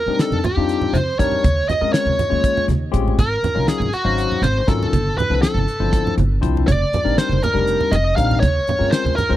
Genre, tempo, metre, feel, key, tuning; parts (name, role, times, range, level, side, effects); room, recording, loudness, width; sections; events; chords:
electric jazz fusion; 241 BPM (eighths); 7/8; straight; A4 = 440 Hz
bluesy overdriven lead guitar; melody; 0.0-9.4 s; Gb4 to F5; -20 LUFS; right 1 dB; distortion
barky tine electric piano; accompaniment; 0.1-9.4 s; F3 to F5; -23 LUFS; left 9 dB; phaser
upright bass; bass; 0.1-9.4 s; F1 to A2; -21 LUFS; equal
congas; percussion; 0.1-9.3 s; -24 LUFS; right 3 dB
damped 70s drum kit; drums; 0.2-9.3 s; hi-hat, kick drum, snare drum; -19 LUFS; equal
small room ambience; dry, close 1970s-style studio recording; -16 LUFS; side -13 dB against mid
0.0-9.4 A section
0.0 F13sus4; 1.4 Eb13sus4; 3.2 Ab13sus4; 4.9 G13sus4; 6.7 F13sus4; 8.4 Eb13sus4